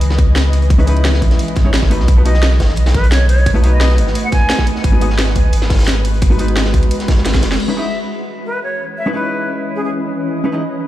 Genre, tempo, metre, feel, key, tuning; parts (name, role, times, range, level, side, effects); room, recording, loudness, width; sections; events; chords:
liquid drum and bass; 174 BPM; 4/4; straight; C# minor; A4 = 440 Hz
shimmering ambient pad; sustained chords; 0.0-10.9 s; E3 to D#5; -23 LUFS; equal; chorus, built-in reverb, sidechain pumping
warm sub bass; bass; 0.0-7.6 s; F#1 to D#2; -13 LUFS; equal
crunchy breakbeat drum kit; drums; 0.0-7.6 s; hi-hat, snare drum; -26 LUFS; equal; high-pass filter on hats, studio reverb, high-pass filter on snare, high-pass filter on room
garage drum kit; drums; 0.0-7.7 s; crash cymbal, hi-hat, snare drum; -22 LUFS; equal; overdrive, studio reverb
electronic kick drum; drums; 0.2-7.4 s; -13 LUFS; equal; overdrive, studio reverb
hollow-body jazz guitar; accompaniment; 0.8-10.6 s; G#3 to D#5; -22 LUFS; left 1 dB; dub echo
breathy bright concert flute; melody; 2.3-4.7, 7.8-9.9 s; G#4 to G#5; -23 LUFS; equal; ping-pong delay
small room ambience; played on a big sound system in a bare room, large studio reverb; -12 LUFS; side -14 dB against mid
0.0-7.6 A section; 7.6-10.9 B section
drum fill 7.3-7.6; filter sweep on ambient pad 7.6-10.9
0.0 C#m9; 2.1 B7; 4.8 G#m7; 7.6 C#m9